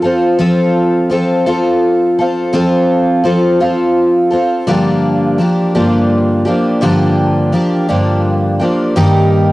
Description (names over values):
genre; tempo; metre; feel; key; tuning
rock; 56 BPM (dotted quarters); 6/8; straight; G minor; A4 = 440 Hz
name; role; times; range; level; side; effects
picked twelve-string acoustic guitar; solo; 0.0-9.5 s; G2 to A4; -10 LUFS; equal; cassette tape
room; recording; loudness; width
moderate studio ambience, RT60 0.5 s; home recording on cassette; -10 LUFS; side -18 dB against mid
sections
0.0-4.7 A section; 4.7-9.5 A section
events
none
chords
0.0 F; 4.7 Gm7; 8.9 Eb/G